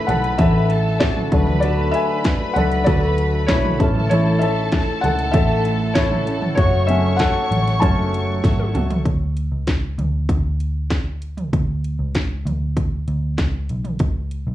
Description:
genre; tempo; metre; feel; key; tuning
piano-driven pop; 97 BPM; 4/4; straight; unclear; A4 = 440 Hz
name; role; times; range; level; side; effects
rich studio violin section; second line; 0.0-9.0 s; A4 to C#6; -27 LUFS; left 1 dB; none
felt-muted upright piano; accompaniment; 0.0-9.1 s; C#3 to A5; -21 LUFS; left 2 dB; none
picked steel-string acoustic guitar; riff; 0.0-9.1 s; F#2 to A4; -24 LUFS; right 3 dB; none
vintage muted picked electric bass; bass; 0.1-14.5 s; F#1 to D2; -21 LUFS; equal; none
house drum kit; drums; 0.1-14.5 s; handclaps, hi-hat, kick drum, snare drum, toms; -21 LUFS; equal; none
room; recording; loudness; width
little or no reverb; worn, warbling old tape, cassette tape, warbly pitch drift, studio reverb; -17 LUFS; side -13 dB against mid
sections
0.0-9.1 A section; 9.1-14.5 B section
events
felt piano solo 0.0-9.1; drum fill 8.4-9.1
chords
0.0 A; 1.3 D; 3.8 A; 6.6 F#m; 9.1 Bmadd9 (rootless); 14.0 Bsus2

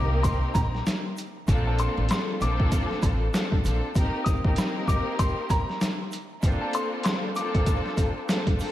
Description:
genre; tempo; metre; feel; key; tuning
hip hop, boom-bap hip-hop; 97 BPM; 4/4; swing 59% on 16ths; unclear; A4 = 440 Hz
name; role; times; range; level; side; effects
warm upright piano; melody; 0.0-8.2 s; A5 to Eb6; -33 LUFS; left 2 dB; high-pass filter, low-pass filter, tape echo
rich studio string section; accompaniment; 0.0-8.7 s; Bb3 to Bb4; -30 LUFS; left 1 dB; cassette tape, high-pass filter, low-pass filter
upright bass; bass; 0.0-3.8 s; A1 to C2; -26 LUFS; equal; none
trip hop sampler-style drum kit; drums; 0.2-8.7 s; hi-hat, kick drum, snare drum; -25 LUFS; equal; overdrive, vintage 12-bit sampler grit
tube shaker and woodblock; percussion; 0.2-8.7 s; none; -43 LUFS; right 6 dB; none
room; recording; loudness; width
moderate lush hall reverb, RT60 1.8 s, studio reverb; dreamy mix soaked in reverb, vinyl crackle; -23 LUFS; side -13 dB against mid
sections
0.0-8.7 A section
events
none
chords
0.0 Cm7; 1.5 Bbmaj9; 4.0 Cm7; 6.4 Bbmaj9

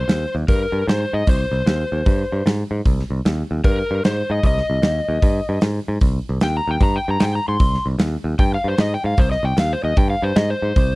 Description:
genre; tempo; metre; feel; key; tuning
blues rock power trio and southern rock; 152 BPM; 4/4; swing 65% on 8ths; C minor; A4 = 440 Hz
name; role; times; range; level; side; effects
overdriven slide guitar; melody; 0.0-11.0 s; Bb4 to C6; -22 LUFS; left 1 dB; none
picked electric bass; bass; 0.0-10.9 s; C2 to Ab2; -21 LUFS; equal; none
huge arena drum kit; drums; 0.1-10.9 s; hi-hat, kick drum, snare drum; -19 LUFS; equal; none
room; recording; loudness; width
little or no reverb; dry, close 1970s-style studio recording; -17 LUFS; side -22 dB against mid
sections
0.0-11.0 A section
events
electric slide guitar solo 0.0-11.0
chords
0.0 Cm

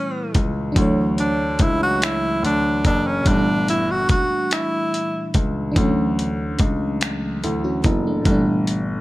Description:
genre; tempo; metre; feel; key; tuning
slow six-eight R&B; 48 BPM (dotted quarters); 6/8; straight; D major; A4 = 439 Hz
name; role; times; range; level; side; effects
breathy tenor saxophone; melody; 0.0-5.4 s; C#4 to F#4; -21 LUFS; equal; slapback echo
FM electric piano; accompaniment; 0.0-9.0 s; A2 to C#5; -23 LUFS; equal; chorus
dusty soul sampler-style drum kit; drums; 0.3-8.9 s; finger snaps, hi-hat, kick drum; -20 LUFS; equal; overdrive
warm baby grand piano; bass; 0.4-9.0 s; F#1 to D2; -24 LUFS; left 1 dB; none
room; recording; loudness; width
little or no reverb; none; -18 LUFS; side -18 dB against mid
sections
0.0-9.0 A section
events
none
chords
0.0 Gm6; 0.8 Dmaj9; 3.3 Gm6; 5.8 Dmaj9; 8.3 Gm6

